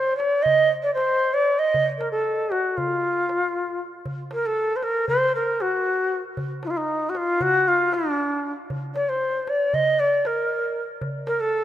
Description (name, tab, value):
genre	Turkish makam ensemble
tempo	233 BPM (eighths)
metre	9/8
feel	straight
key	F makam hicaz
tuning	A4 = 440 Hz
part	breathy bright ney	melody	0.0-11.6 s	D4-36c to Eb5	-21 LUFS	equal	none
part	darbuka	percussion	0.2-11.6 s	none	-34 LUFS	equal	none
room	moderate plate reverb, RT60 3.2 s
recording	rough home demo mix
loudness	-20 LUFS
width	side -11 dB against mid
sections	0.0-11.6 A section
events	none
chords	none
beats	0.19 0.45 0.71 0.96 1.22 1.48 | 1.74 2.00 2.25 2.51 2.77 3.03 3.28 3.54 3.80 | 4.06 4.32 4.57 4.83 5.09 5.35 5.61 5.86 6.12 | 6.38 6.64 6.89 7.15 7.41 7.67 7.92 8.18 8.44 | 8.70 8.96 9.21 9.47 9.73 9.98 10.24 10.50 10.76 | 11.02 11.27 11.53